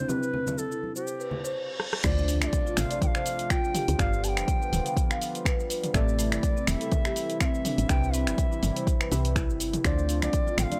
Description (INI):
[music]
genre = afro house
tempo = 123 BPM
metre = 4/4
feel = swing 55% on 16ths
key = D dorian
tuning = A4 = 439 Hz
[part]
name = bright reedy bass bansuri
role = melody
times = 0.0-10.8 s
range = G4 to A5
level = -36 LUFS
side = equal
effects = none
[part]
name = warm analog pad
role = sustained chords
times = 0.0-10.8 s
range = C3 to G4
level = -39 LUFS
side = equal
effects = chorus, sidechain pumping
[part]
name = deep mellow chord stab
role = stabs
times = 0.0-10.8 s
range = A3 to E5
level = -40 LUFS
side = equal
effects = chorus, sidechain pumping
[part]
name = marimba with soft mallets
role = arpeggios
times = 0.1-10.8 s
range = A3 to G5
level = -36 LUFS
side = equal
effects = sidechain pumping, analog delay
[part]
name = deep house drum kit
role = drums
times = 0.1-10.8 s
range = cabasa, crash cymbal, finger snaps, hi-hat, rim click, toms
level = -34 LUFS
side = equal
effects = none
[part]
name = congas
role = percussion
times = 0.1-1.4, 10.2-10.8 s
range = none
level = -39 LUFS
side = equal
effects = none
[part]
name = reverse cymbal and impact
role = sound effects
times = 1.2-4.0 s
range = none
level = -41 LUFS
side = equal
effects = none
[part]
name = woody FM bass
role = bass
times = 2.0-10.7 s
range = D1 to D2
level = -30 LUFS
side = equal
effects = sidechain pumping
[part]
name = electronic kick drum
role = drums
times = 2.0-10.4 s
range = none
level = -29 LUFS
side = equal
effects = none
[sound]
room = little or no reverb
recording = dry, gritty hardware recording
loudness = -27 LUFS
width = mono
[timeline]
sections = 0.0-2.0 A section; 2.0-10.8 B section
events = filter sweep on drum 0.0-2.0; reverse cymbal 1.2-2.0; drum fill 1.8; drop 2.0-10.8; impact 2.0-4.0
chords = 0.1 Cmaj7; 2.0 Dm7; 4.0 G7; 5.9 Am7; 7.9 Cmaj7; 9.8 Dm7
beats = | 0.09 0.58 1.07 1.55 | 2.04 2.53 3.02 3.51 | 3.99 4.48 4.97 5.46 | 5.95 6.43 6.92 7.41 | 7.90 8.38 8.87 9.36 | 9.85 10.34